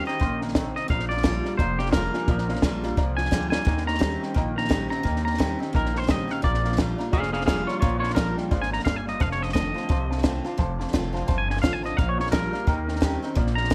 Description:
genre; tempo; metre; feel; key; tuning
rockabilly; 173 BPM; 4/4; swing 60% on 8ths; Bb mixolydian; A4 = 440 Hz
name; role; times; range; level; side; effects
twangy electric guitar; melody; 0.0-13.7 s; F4 to Bb5; -31 LUFS; equal; analog delay
picked steel-string acoustic guitar; accompaniment; 0.0-13.7 s; F2 to G4; -34 LUFS; equal; none
electric guitar through a small old amp; riff; 0.0-13.7 s; F2 to C4; -35 LUFS; equal; analog chorus
dark upright piano; accompaniment; 0.1-13.7 s; C5 to C6; -38 LUFS; equal; none
compact cocktail drum kit; drums; 0.1-13.7 s; hi-hat, kick drum, snare drum; -28 LUFS; equal; none
upright bass; bass; 0.2-13.7 s; F1 to Eb2; -32 LUFS; equal; none
room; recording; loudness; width
light reverb; none; -25 LUFS; mono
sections
0.0-13.7 A section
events
drum fill 3.3-3.7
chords
0.0 Eb7; 0.9 Bb7; 3.7 Eb7; 6.4 Bb7; 9.2 F7; 12.0 Bb7; 12.7 Eb7

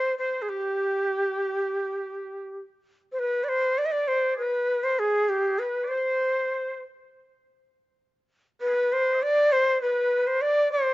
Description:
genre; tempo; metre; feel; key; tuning
Turkish makam ensemble; free time; none; none; G makam hicaz; A4 = 439 Hz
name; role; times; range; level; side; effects
breathy bright ney; melody; 0.0-10.9 s; G4 to E5-44c; -23 LUFS; equal; none
clear oboe; second line; 0.0-10.9 s; G4 to E5-41c; -38 LUFS; right 4 dB; none
room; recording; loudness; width
studio reverb; rough home demo mix, nothing above 7.7 kHz; -23 LUFS; side -18 dB against mid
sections
0.0-3.2 A section; 3.2-10.9 B section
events
none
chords
none

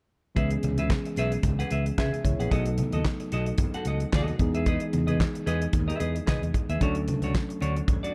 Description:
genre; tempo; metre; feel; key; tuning
disco; 112 BPM; 4/4; swing 56% on 16ths; C# minor; A4 = 440 Hz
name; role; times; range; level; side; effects
mellow tine electric piano; accompaniment; 0.3-8.1 s; E3 to E5; -34 LUFS; equal; none
semi-hollow electric guitar; accompaniment; 0.4-8.1 s; D4 to F#5; -36 LUFS; equal; none
fingered electric bass; bass; 0.4-7.8 s; A#1 to C#3; -30 LUFS; equal; none
damped 70s drum kit; drums; 0.4-8.1 s; handclaps, hi-hat, kick drum, snare drum; -30 LUFS; equal; none
congas; percussion; 0.6-8.0 s; none; -37 LUFS; equal; none
room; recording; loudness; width
small room reverb; dark, warm production; -27 LUFS; mono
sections
0.4-8.1 A section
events
none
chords
0.4 C#m7; 2.5 B7; 4.4 Emaj7; 6.8 Dmaj7

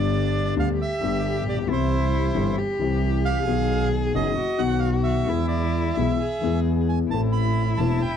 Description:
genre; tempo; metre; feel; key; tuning
tango; 132 BPM; 4/4; rubato; unclear; A4 = 445 Hz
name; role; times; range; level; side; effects
bandoneon; melody; 0.0-8.2 s; C5 to B5; -29 LUFS; right 6 dB; none
rich cello; second line; 0.0-8.2 s; D4 to G#4; -29 LUFS; left 2 dB; none
warm concert grand piano; accompaniment; 0.0-8.0 s; E1 to A4; -25 LUFS; left 10 dB; none
dark double bass; bass; 0.0-8.0 s; E1 to E2; -25 LUFS; right 3 dB; none
room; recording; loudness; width
studio reverb; dry, close 1970s-style studio recording; -21 LUFS; side -8 dB against mid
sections
0.0-8.2 A section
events
none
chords
0.0 G; 1.7 C; 3.5 B; 5.3 E; 7.1 Am

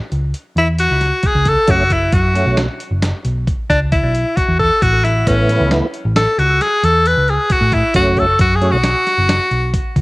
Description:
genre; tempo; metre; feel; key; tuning
progressive instrumental, band music in an uneven meter; 134 BPM; 7/4; straight; F# minor; A4 = 441 Hz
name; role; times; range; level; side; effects
hollow-body short-scale picked electric bass; bass; 0.1-10.0 s; F#1 to A2; -17 LUFS; equal; none
dusty soul sampler-style drum kit; drums; 0.1-10.0 s; hi-hat, kick drum, snare drum; -19 LUFS; equal; cassette tape
edgy tenor saxophone; melody; 0.6-9.8 s; C#4 to B4; -15 LUFS; left 1 dB; cassette tape, analog delay
tonewheel organ; accompaniment; 1.7-8.8 s; E3 to F#4; -19 LUFS; right 1 dB; overdrive, chorus vibrato, slow rotary speaker, cassette tape
room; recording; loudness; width
light reverb, digital ambience; home recording on cassette; -12 LUFS; side -22 dB against mid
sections
0.0-10.0 A section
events
tenor saxophone solo 0.0-10.0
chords
0.0 N.C.; 1.7 F#m; 4.8 Asus2; 7.9 F#m

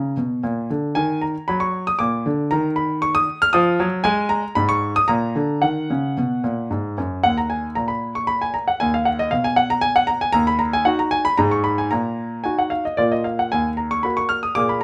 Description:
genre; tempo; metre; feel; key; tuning
classical-period piano sonatina; 115 BPM; 3/4; rubato; Eb minor; A4 = 439 Hz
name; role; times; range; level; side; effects
clear grand piano; solo; 0.0-14.8 s; Eb2 to F6; -20 LUFS; equal; none
room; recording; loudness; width
light reverb; none; -21 LUFS; mono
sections
0.0-7.2 A section; 7.2-14.8 A section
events
none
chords
0.4 Bb; 1.0 Ebm; 2.0 Bb; 2.5 Ebm; 4.1 N.C.; 5.1 Bb; 5.6 Ebm; 7.2 Eb5; 8.8 Abm13/Eb; 10.3 Ebm; 11.4 Ab5; 11.9 Ebm/Bb; 13.0 Bb5; 13.5 Ebm

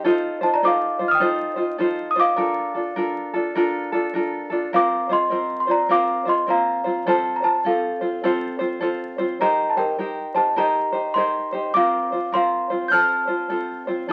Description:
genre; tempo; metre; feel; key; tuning
Hawaiian; 103 BPM; 4/4; swing 63% on 8ths; Bb major; A4 = 440 Hz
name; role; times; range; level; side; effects
tenor ukulele; accompaniment; 0.0-14.1 s; C4 to C5; -26 LUFS; equal; none
celesta; melody; 0.4-13.8 s; A4 to G6; -23 LUFS; equal; none
room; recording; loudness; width
wet studio reverb, RT60 0.6 s; very old 78 rpm record, vinyl crackle; -22 LUFS; mono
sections
0.0-4.7 A section; 4.7-14.1 B section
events
none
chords
0.1 F7; 2.4 Bbmaj7; 4.7 Bbsus2; 7.1 F; 9.4 Cm7; 11.7 Fsus4; 12.9 F

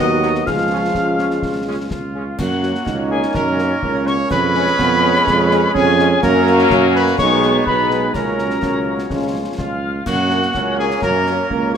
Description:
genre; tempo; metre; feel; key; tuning
military-style march for wind band; 125 BPM; 2/4; straight; F# major; A4 = 440 Hz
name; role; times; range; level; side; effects
mellow cornet; melody; 0.0-11.8 s; E#4 to E#5; -22 LUFS; equal; none
mellow wooden piccolo; second line; 0.0-11.8 s; E#5 to E#6; -22 LUFS; left 3 dB; none
warm euphonium; second line; 0.0-11.8 s; D#3 to D#4; -23 LUFS; right 5 dB; none
warm woodwind section; second line; 0.0-11.8 s; E#4 to C#5; -27 LUFS; left 2 dB; none
mellow French horn section; accompaniment; 0.0-11.8 s; F#3 to B4; -22 LUFS; left 6 dB; none
mellow tuba; bass; 0.0-11.8 s; B1 to F#2; -20 LUFS; right 3 dB; none
bright trombone section; sustained chords; 0.2-11.8 s; E#3 to C#4; -26 LUFS; right 1 dB; none
concert snare drum, clash cymbals and concert bass drum; drums; 0.2-11.8 s; none; -28 LUFS; left 1 dB; none
room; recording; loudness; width
moderate recital hall reverb, RT60 1.5 s; none; -14 LUFS; side -8 dB against mid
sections
0.0-2.4 A section; 2.4-11.8 B section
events
none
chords
0.5 C#; 2.4 F#; 4.3 C#7/E#; 6.2 F#; 7.2 G#m/B; 8.1 F#/C#; 9.1 C#; 10.1 F#

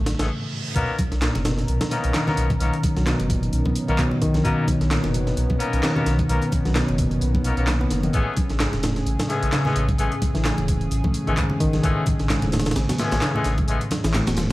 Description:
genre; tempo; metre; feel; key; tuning
breakbeat, breaks; 130 BPM; 4/4; swing 56% on 16ths; unclear; A4 = 440 Hz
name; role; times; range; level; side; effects
lush unison pad; sustained chords; 0.0-14.5 s; C#3 to A#4; -30 LUFS; equal; chorus, sidechain pumping
bright reed electric piano; riff; 0.0-14.5 s; G#2 to B3; -25 LUFS; equal; overdrive
saturated sub bass; bass; 0.0-14.5 s; E1 to B1; -25 LUFS; equal; tube saturation
reverse cymbal and impact; sound effects; 0.0-2.6 s; none; -36 LUFS; right 2 dB; none
breakbeat sampler-style drum kit; drums; 0.1-14.5 s; hi-hat, kick drum, snare drum; -26 LUFS; equal; studio reverb
punchy analog drum machine; drums; 0.1-14.5 s; handclaps, hi-hat; -32 LUFS; equal; studio reverb
warm horn section; stabs; 0.2-13.8 s; G#3 to A#4; -29 LUFS; left 3 dB; dub echo
congas; percussion; 1.0-14.5 s; none; -32 LUFS; equal; none
room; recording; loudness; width
little or no reverb; vinyl crackle; -19 LUFS; side -18 dB against mid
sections
0.8-14.5 A section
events
reverse cymbal 0.0-0.8; stop 0.3-0.8; drop 0.8-14.5; impact 0.8-2.6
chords
0.0 Amaj9; 0.8 Bmaj9; 8.1 Amaj9

